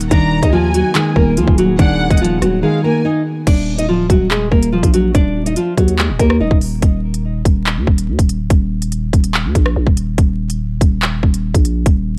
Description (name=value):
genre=hip hop, drill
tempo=143 BPM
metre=4/4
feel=half-time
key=Eb harmonic minor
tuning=A4 = 440 Hz
part: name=soft electric-piano-like synth keys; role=accompaniment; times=0.0-3.5 s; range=Eb3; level=-21 LUFS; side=equal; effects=chorus
part: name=glassy FM pad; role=sustained chords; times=0.1-3.4 s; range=Bb3 to Ab4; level=-31 LUFS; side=equal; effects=none
part: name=growling 808-style bass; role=bass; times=0.0-12.2 s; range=D1 to Eb2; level=-20 LUFS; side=equal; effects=none
part: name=drill drum kit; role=drums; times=0.0-12.0 s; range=crash cymbal, handclaps, hi-hat, kick drum, rim click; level=-16 LUFS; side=equal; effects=none
part: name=nylon-string guitar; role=melody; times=0.1-6.6 s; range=F3 to Eb5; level=-19 LUFS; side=equal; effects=none
part: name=warm studio violin section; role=second line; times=0.1-3.0 s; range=F5 to Bb5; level=-26 LUFS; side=equal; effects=tape echo
room=digital ambience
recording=dry, gritty hardware recording, vinyl crackle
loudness=-15 LUFS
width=mono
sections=0.0-3.5 A section; 3.5-12.2 B section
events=break 2.6-3.5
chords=0.1 Abmadd9; 3.5 Ebm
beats=| 0.11 0.53 0.95 1.37 | 1.79 2.21 2.63 3.05 | 3.47 3.89 4.31 4.73 | 5.15 5.57 5.99 6.41 | 6.83 7.25 7.66 8.08 | 8.50 8.92 9.34 9.76 | 10.18 10.60 11.02 11.44 | 11.86